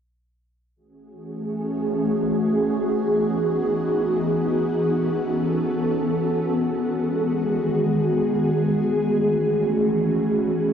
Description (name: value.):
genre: hip hop.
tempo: free time.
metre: none.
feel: none.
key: F# dorian.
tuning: A4 = 440 Hz.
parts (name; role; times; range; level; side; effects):
ethereal airy pad; solo; 1.3-10.7 s; D#3 to A4; -20 LUFS; equal; ensemble chorus, built-in reverb, tape echo.
room: moderate huge ambient reverb, RT60 4.4 s.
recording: dark, warm production.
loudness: -20 LUFS.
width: side -8 dB against mid.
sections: 0.8-10.7 A section.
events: none.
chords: 0.8 F#m9; 2.7 Emaj9; 4.7 B9sus4; 6.7 G#m7; 8.7 F#m9.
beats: free time.